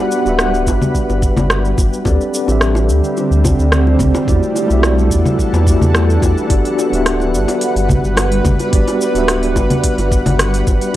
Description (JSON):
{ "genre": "sunset chillout", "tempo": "108 BPM", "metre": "4/4", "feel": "straight", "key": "G major", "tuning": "A4 = 439 Hz", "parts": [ { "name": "mellow tine electric piano", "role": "accompaniment", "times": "0.0-11.0 s", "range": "A3 to E5", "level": "-18 LUFS", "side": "equal", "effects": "medium stereo tremolo, auto-pan, analog delay" }, { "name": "shimmering ambient pad", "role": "sustained chords", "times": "0.0-10.9 s", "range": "D3 to F#5", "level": "-19 LUFS", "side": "equal", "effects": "chorus, built-in reverb" }, { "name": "smooth R&B drum kit", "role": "drums", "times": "0.1-10.9 s", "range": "congas, hi-hat, rim click, shaker", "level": "-19 LUFS", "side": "left 1 dB", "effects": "studio reverb" }, { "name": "warm sub bass", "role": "bass", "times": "0.3-10.8 s", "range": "D1 to E2", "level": "-16 LUFS", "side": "equal", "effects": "none" }, { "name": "bongos", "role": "percussion", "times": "0.4-10.8 s", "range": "none", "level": "-25 LUFS", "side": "left 2 dB", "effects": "none" }, { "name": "electronic kick drum", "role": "drums", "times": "0.7-10.8 s", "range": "none", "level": "-17 LUFS", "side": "equal", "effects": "studio reverb" } ], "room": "digital ambience", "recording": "dry, gritty hardware recording, transformer saturation, cassette tape", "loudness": "-12 LUFS", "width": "side -14 dB against mid", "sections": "0.0-11.0 A section", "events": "none", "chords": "0.0 Gmaj7; 2.1 D7sus4; 4.3 Em11; 6.5 Gmaj7", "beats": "0.39 0.95 1.50 | 2.06 2.61 3.17 3.73 | 4.28 4.84 5.39 5.95 | 6.50 7.06 7.61 8.17 | 8.72 9.28 9.84 10.39 | 10.95" }